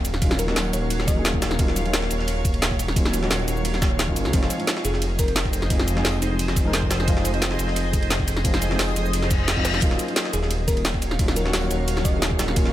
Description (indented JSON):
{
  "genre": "liquid drum and bass",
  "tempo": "175 BPM",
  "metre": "4/4",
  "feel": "straight",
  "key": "Eb dorian",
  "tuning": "A4 = 440 Hz",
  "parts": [
    { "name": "dark concert grand piano", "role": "accompaniment", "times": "0.0-12.7 s", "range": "F3 to Bb4", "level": "-28 LUFS", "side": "left 1 dB", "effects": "vintage 12-bit sampler grit, tape echo" },
    { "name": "shimmering ambient pad", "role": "sustained chords", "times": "0.0-12.7 s", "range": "Gb3 to F5", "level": "-31 LUFS", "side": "equal", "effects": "chorus, built-in reverb, sidechain pumping" },
    { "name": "dark detuned saw bass", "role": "bass", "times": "0.0-12.7 s", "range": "Eb1 to Db2", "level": "-25 LUFS", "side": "equal", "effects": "none" },
    { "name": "drum and bass drum kit", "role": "drums", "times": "0.0-12.6 s", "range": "cabasa, hi-hat, snare drum", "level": "-26 LUFS", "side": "equal", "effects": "overdrive" },
    { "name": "jungle sampler-style drum kit", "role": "drums", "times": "0.0-12.7 s", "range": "hi-hat, ride cymbal, snare drum", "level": "-30 LUFS", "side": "right 1 dB", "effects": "high-pass filter on cymbals, high-pass filter on snare, high-pass filter on hats, high-pass filter on room" },
    { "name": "electronic kick drum", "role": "drums", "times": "0.2-12.6 s", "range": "none", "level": "-23 LUFS", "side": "equal", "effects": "overdrive" },
    { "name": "bell-like FM electric piano", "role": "melody", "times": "0.4-1.4, 4.8-6.4, 10.3-12.4 s", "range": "Eb4 to Eb5", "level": "-32 LUFS", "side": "left 1 dB", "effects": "chorus, tape echo" },
    { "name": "reverse cymbal", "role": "sound effects", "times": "9.3-9.8 s", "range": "none", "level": "-28 LUFS", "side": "left 5 dB", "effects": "none" }
  ],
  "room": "little or no reverb",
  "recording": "none",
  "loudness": "-20 LUFS",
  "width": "side -13 dB against mid",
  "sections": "0.0-12.7 A section",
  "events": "reverse cymbal 9.3-9.8",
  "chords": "0.0 Ebm9; 4.3 Fm7; 9.8 Ebm9",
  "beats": "| 0.22 0.56 0.91 1.25 | 1.59 1.94 2.28 2.62 | 2.96 3.31 3.65 3.99 | 4.34 4.68 5.02 5.37 | 5.71 6.05 6.39 6.74 | 7.08 7.42 7.76 8.11 | 8.45 8.79 9.14 9.48 | 9.82 10.16 10.51 10.85 | 11.19 11.54 11.88 12.22 | 12.56"
}